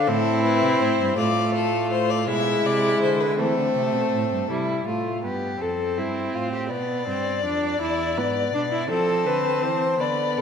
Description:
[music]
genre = classical, baroque-style fugue for string quartet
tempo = 54 BPM (dotted quarters)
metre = 6/8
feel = straight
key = unclear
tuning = A4 = 440 Hz
[part]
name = rich violin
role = melody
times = 0.0-4.5, 8.9-10.4 s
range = A4 to B5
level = -26 LUFS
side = left 8 dB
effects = none
[part]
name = rich violin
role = second line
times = 0.0-10.4 s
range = C4 to D5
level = -25 LUFS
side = left 2 dB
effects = none
[part]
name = clear viola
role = accompaniment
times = 0.0-10.4 s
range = G3 to E4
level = -26 LUFS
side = right 2 dB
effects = none
[part]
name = rich cello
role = bass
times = 0.0-10.4 s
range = E2 to F3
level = -29 LUFS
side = right 5 dB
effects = none
[sound]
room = wet scoring stage reverb, RT60 1.8 s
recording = none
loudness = -21 LUFS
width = side -7 dB against mid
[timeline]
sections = 0.0-4.5 A section; 4.5-10.4 B section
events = none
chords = 0.1 Am; 1.2 Dm/A; 2.3 E7/B; 3.4 Am; 4.5 C; 5.6 F; 6.7 Bdim; 7.8 E; 8.9 F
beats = | 0.08 1.18 | 2.28 3.39 | 4.50 5.61 | 6.71 7.81 | 8.90 10.00

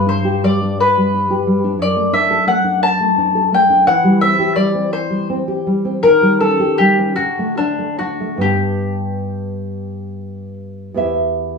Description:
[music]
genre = romantic duo for mandolin and classical guitar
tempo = 46-60 BPM (dotted quarters)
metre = 6/8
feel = rubato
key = G major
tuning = A4 = 441 Hz
[part]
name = mandolin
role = melody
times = 0.0-10.5 s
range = D4 to A5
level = -15 LUFS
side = left 2 dB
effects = none
[part]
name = nylon-string guitar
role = accompaniment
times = 0.0-11.6 s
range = E2 to E5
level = -18 LUFS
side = equal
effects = none
[sound]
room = moderate studio ambience, RT60 0.5 s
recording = band playing live in one room, studio reverb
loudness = -13 LUFS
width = side -5 dB against mid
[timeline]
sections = 0.0-11.0 A section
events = none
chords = 0.0 G; 1.8 D/F#; 3.9 C/E; 6.0 Eb7; 7.2 D5; 8.4 G; 11.0 Em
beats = 0.79 | 1.81 2.83 | 3.88 4.93 | 6.03 7.18 | 8.43 9.72 | 10.97

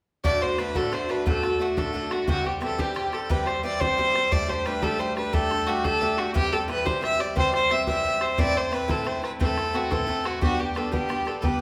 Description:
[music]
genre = celtic folk, Celtic slide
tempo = 118 BPM (dotted quarters)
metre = 12/8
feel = straight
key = D mixolydian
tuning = A4 = 439 Hz
[part]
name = rich fiddle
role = melody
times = 0.2-11.6 s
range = F#4 to E5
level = -28 LUFS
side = equal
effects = none
[part]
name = picked swing-style acoustic guitar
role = accompaniment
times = 0.2-11.6 s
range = D2 to G4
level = -30 LUFS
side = equal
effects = none
[part]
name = bodhran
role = percussion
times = 0.2-11.5 s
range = none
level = -32 LUFS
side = equal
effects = none
[sound]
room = wet recital hall reverb, RT60 1.9 s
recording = recorded in a church or concert hall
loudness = -25 LUFS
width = mono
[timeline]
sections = 0.2-11.6 A section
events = none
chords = 0.2 D; 2.3 C; 4.3 Gsus2; 6.4 C; 8.4 Am; 10.4 G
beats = | 0.25 0.76 1.27 1.78 | 2.28 2.79 3.30 3.81 | 4.32 4.83 5.34 5.84 | 6.35 6.86 7.37 7.88 | 8.38 8.89 9.40 9.91 | 10.42 10.92 11.43

